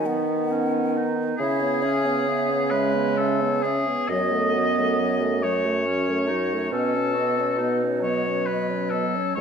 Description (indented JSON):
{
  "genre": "classical, slow romantic movement for wind quintet",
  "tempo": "45 BPM (dotted quarters)",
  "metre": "12/8",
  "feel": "rubato",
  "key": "unclear",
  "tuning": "A4 = 440 Hz",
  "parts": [
    { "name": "mellow hollow concert flute", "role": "melody", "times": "0.0-9.4 s", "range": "A4 to F#5", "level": "-31 LUFS", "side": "left 6 dB", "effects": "none" },
    { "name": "clear oboe", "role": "second line", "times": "0.0-9.4 s", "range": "G#4 to D#5", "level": "-26 LUFS", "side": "left 3 dB", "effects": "none" },
    { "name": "mellow French horn", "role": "accompaniment", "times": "0.0-9.4 s", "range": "F#3 to C#4", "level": "-30 LUFS", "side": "right 1 dB", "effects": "none" },
    { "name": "mellow bassoon", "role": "bass", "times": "0.0-9.4 s", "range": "E2 to D#3", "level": "-25 LUFS", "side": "right 2 dB", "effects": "none" },
    { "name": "warm clarinet", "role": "accompaniment", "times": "0.1-9.4 s", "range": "F#3 to F#4", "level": "-29 LUFS", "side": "right 6 dB", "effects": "none" }
  ],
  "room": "wet recital hall reverb, RT60 1.5 s",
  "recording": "none",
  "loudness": "-21 LUFS",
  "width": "side -6 dB against mid",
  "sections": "0.0-9.4 A section",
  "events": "none",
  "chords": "0.0 B/D#; 1.4 C#m7; 4.1 F#m; 6.7 B9",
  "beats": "0.06 | 1.39 2.70 4.09 5.42 | 6.72 8.03 9.36"
}